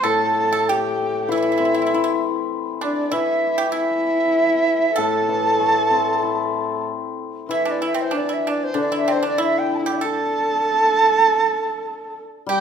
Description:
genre	chinese traditional, Chinese chamber ensemble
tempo	97 BPM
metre	4/4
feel	rubato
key	A yu mode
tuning	A4 = 439 Hz
part	large dizi	melody	0.0-12.6 s	E4 to A5	-20 LUFS	right 2 dB	none
part	dark horsehead fiddle	second line	0.0-12.6 s	D4 to A4	-25 LUFS	equal	none
part	pipa	second line	0.0-12.6 s	C4 to A4	-26 LUFS	right 5 dB	none
part	hammered dulcimer	accompaniment	0.0-12.6 s	A2 to E4	-24 LUFS	left 6 dB	none
room	moderate recital hall reverb, RT60 1.7 s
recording	minimal, uncompressed stereo recording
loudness	-18 LUFS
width	side -7 dB against mid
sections	0.0-7.5 A section; 7.5-12.6 B section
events	none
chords	none

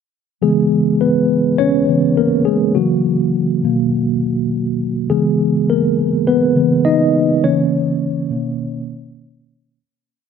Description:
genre	soul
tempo	103 BPM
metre	4/4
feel	straight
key	C# dorian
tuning	A4 = 440 Hz
part	mellow tine electric piano	solo	0.4-9.8 s	B2 to D#5	-14 LUFS	equal	medium stereo tremolo
room	moderate plate reverb, RT60 3.0 s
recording	dark, warm production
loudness	-14 LUFS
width	side -6 dB against mid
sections	0.4-9.8 A section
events	tine electric piano solo 0.4-9.8; fade-out 7.4-9.8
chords	0.4 C#m7; 2.8 F#7/C#; 3.6 Bmaj7; 5.1 C#m9; 7.4 C#m6; 8.3 Bmaj9

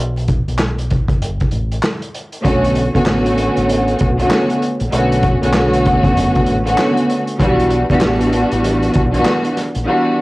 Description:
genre	hip hop, boom-bap hip-hop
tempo	97 BPM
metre	4/4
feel	swing 62% on 16ths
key	B minor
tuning	A4 = 436 Hz
part	deep dub fingered electric bass	bass	0.0-9.9 s	F#1 to B1	-20 LUFS	equal	none
part	vintage drum kit	drums	0.2-9.9 s	handclaps, hi-hat, kick drum, snare drum	-19 LUFS	equal	cassette tape
part	warm studio string section	accompaniment	2.4-10.2 s	D3 to F#4	-14 LUFS	equal	cassette tape, high-pass filter, low-pass filter
room	studio reverb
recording	home recording on cassette, vinyl crackle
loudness	-13 LUFS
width	side -20 dB against mid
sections	0.0-10.2 A section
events	break 0.0-2.4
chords	0.0 Em (rootless); 2.4 Bm7; 7.4 Em7

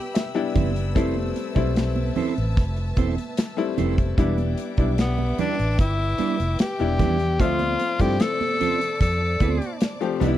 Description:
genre	lush 1970s-style soul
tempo	75 BPM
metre	4/4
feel	straight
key	D dorian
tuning	A4 = 438 Hz
part	breathy tenor saxophone	melody	0.0-9.8 s	B3 to A4	-25 LUFS	left 2 dB	none
part	clear grand piano	accompaniment	0.0-10.4 s	F3 to G5	-28 LUFS	left 7 dB	none
part	warm studio string section	sustained chords	0.0-10.4 s	B4 to E6	-36 LUFS	equal	none
part	modern studio drum kit	drums	0.2-10.4 s	hi-hat, kick drum, snare drum	-22 LUFS	equal	none
part	congas	percussion	0.2-10.4 s	none	-31 LUFS	right 8 dB	none
part	mellow electric guitar	riff	0.4-10.4 s	G3 to D5	-27 LUFS	right 9 dB	none
part	vintage muted fingered electric bass	bass	0.6-10.4 s	E1 to G2	-24 LUFS	equal	none
room	little or no reverb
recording	dry, close 1970s-style studio recording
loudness	-20 LUFS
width	side -12 dB against mid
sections	0.0-10.4 A section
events	grand piano fill 0.0-1.0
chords	0.0 Cmaj7; 1.0 Fmaj7; 4.2 Em7; 7.4 Dm7

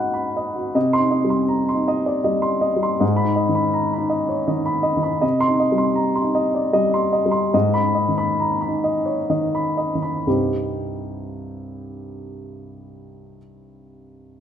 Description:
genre	neoclassical minimalist piano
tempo	60-82 BPM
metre	3/4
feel	rubato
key	unclear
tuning	A4 = 441 Hz
part	warm upright piano	solo	0.0-14.4 s	C2 to C6	-18 LUFS	equal	none
room	moderate scoring stage reverb, RT60 1.6 s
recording	minimal, uncompressed stereo recording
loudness	-18 LUFS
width	side -9 dB against mid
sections	0.8-10.3 A section; 10.3-13.2 B section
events	slowing down 4.1-10.3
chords	0.0 Abm7; 0.8 Cm; 3.0 Abm; 5.2 Cm; 7.5 Abm; 10.3 Cm

